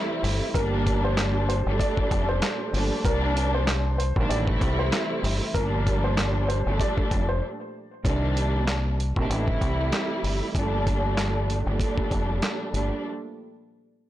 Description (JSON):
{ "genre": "hip hop, boom-bap hip-hop", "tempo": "96 BPM", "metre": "4/4", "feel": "swing 57% on 16ths", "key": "G minor", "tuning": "A4 = 440 Hz", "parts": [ { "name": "dark upright piano", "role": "melody", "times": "0.0-7.4 s", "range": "Bb4 to D5", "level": "-32 LUFS", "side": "left 1 dB", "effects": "high-pass filter, low-pass filter, tape echo" }, { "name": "warm studio string section", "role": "accompaniment", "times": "0.0-13.0 s", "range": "Bb2 to E4", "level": "-28 LUFS", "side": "right 1 dB", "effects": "high-pass filter, low-pass filter" }, { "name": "deep dub fingered electric bass", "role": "bass", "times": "0.2-12.9 s", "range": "F1 to C2", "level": "-26 LUFS", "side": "equal", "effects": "tube saturation" }, { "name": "dusty soul sampler-style drum kit", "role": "drums", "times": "0.2-12.9 s", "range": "handclaps, hi-hat, kick drum, snare drum", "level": "-28 LUFS", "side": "equal", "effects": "none" } ], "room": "small room ambience", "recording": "blown-out, overdriven recording, overdrive", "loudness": "-22 LUFS", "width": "side -14 dB against mid", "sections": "0.0-8.0 A section; 8.0-13.0 B section", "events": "break 7.4-8.0", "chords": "0.0 Am7; 0.5 Gm7; 3.0 Cm7; 4.3 Am7; 5.5 Gm7; 8.0 Cm7; 9.3 Am7; 10.5 Gm7", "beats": "| 0.55 1.17 1.80 2.42 | 3.05 3.67 4.30 4.92 | 5.55 6.17 6.80 7.42 | 8.05 8.67 9.30 9.92 | 10.55 11.17 11.80 12.42" }